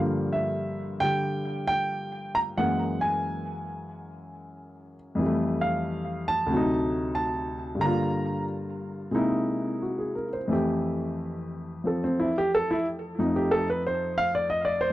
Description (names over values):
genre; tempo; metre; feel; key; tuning
solo jazz; 90 BPM; 4/4; swing 66% on 8ths, rubato; F major; A4 = 441 Hz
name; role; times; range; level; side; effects
warm baby grand piano; solo; 0.0-14.9 s; D2 to Bb5; -25 LUFS; equal; none
room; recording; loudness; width
moderate booth ambience, RT60 0.2 s; dry, close 1970s-style studio recording; -25 LUFS; side -15 dB against mid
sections
0.0-10.5 A section; 10.5-14.9 B section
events
grand piano solo 10.5-14.9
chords
0.0 Gm7; 2.6 Gb9; 5.2 Fmaj9; 6.5 D7b9; 7.8 Gm7; 9.1 C7alt; 10.5 Fmaj9; 13.2 F7